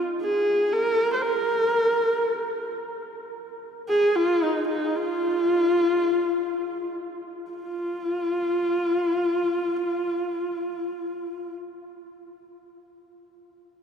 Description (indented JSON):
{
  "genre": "mongolian traditional",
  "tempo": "free time",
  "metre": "none",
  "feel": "none",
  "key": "F yu mode",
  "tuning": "A4 = 437 Hz",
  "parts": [
    { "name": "warm horsehead fiddle", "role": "solo", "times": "0.2-11.5 s", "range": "Eb4 to C5", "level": "-23 LUFS", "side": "equal", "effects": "none" }
  ],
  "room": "wet cathedral reverb, RT60 6.3 s",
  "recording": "recorded in a church or concert hall",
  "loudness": "-22 LUFS",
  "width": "side -7 dB against mid",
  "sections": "0.0-7.5 A section; 7.5-12.7 B section",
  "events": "slowing down 3.2-7.5",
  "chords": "none",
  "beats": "free time"
}